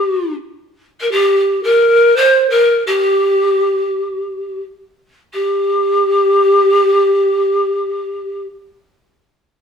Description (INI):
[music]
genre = andean folk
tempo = free time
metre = none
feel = none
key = G minor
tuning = A4 = 444 Hz
[part]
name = breathy mellow pan flute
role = solo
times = 0.0-8.4 s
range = G4 to C5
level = -12 LUFS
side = equal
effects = none
[sound]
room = moderate stone room reverb, RT60 1.0 s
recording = band playing live in one room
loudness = -12 LUFS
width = side -7 dB against mid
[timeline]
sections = 0.0-5.3 A section; 5.3-9.6 B section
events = none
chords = none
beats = free time